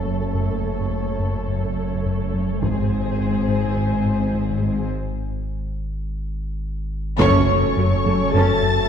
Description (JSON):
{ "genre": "cinematic, hybrid orchestral and electronic film score", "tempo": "105 BPM", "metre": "4/4", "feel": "straight", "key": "F# minor", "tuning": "A4 = 440 Hz", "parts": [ { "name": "warm symphonic violin section", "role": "melody", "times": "0.0-8.9 s", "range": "B#4 to A6", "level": "-28 LUFS", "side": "left 2 dB", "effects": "low-pass filter" }, { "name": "warm symphonic violin section", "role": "second line", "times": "0.0-8.9 s", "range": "G#4 to A5", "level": "-28 LUFS", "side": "left 2 dB", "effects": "none" }, { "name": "rich symphonic viola section", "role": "accompaniment", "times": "0.0-8.9 s", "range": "F#3 to A4", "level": "-28 LUFS", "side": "right 1 dB", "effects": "low-pass filter" }, { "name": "rich symphonic cello section", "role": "bass", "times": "0.0-8.4 s", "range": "F#2 to G#2", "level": "-26 LUFS", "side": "right 1 dB", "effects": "none" }, { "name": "sub bass with octave", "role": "bass", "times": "0.0-8.9 s", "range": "F#1 to G#1", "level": "-28 LUFS", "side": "equal", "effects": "none" }, { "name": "warm symphonic double bass section", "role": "bass", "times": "0.0-8.4 s", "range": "F#1 to G#1", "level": "-26 LUFS", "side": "right 2 dB", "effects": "none" }, { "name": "round analog bass", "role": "riff", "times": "0.1-8.8 s", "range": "F#2 to G#3", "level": "-25 LUFS", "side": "left 2 dB", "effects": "low-pass filter" }, { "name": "taiko ensemble", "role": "drums", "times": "2.6-3.7, 7.2-7.7 s", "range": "none", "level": "-27 LUFS", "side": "equal", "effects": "none" }, { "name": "mellow trombone section", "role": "sustained chords", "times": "7.2-8.9 s", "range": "F#3 to A3", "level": "-27 LUFS", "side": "right 3 dB", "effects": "low-pass filter" }, { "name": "warm French horn section", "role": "sustained chords", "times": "7.2-8.9 s", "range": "C#4 to A4", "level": "-24 LUFS", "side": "left 3 dB", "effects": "low-pass filter" } ], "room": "wet scoring stage reverb, RT60 1.7 s", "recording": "heard from further back in the room", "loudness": "-19 LUFS", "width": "side -8 dB against mid", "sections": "0.0-7.2 A section; 7.2-8.9 B section", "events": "filter sweep 0.0-7.2; break 4.9-7.2; band accent 7.2-7.8", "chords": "0.0 F#m; 2.6 G#; 7.2 F#m", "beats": "| 0.34 0.91 1.48 2.05 | 2.62 3.19 3.77 4.34 | 4.91 5.48 6.05 6.62 | 7.20 7.77 8.34" }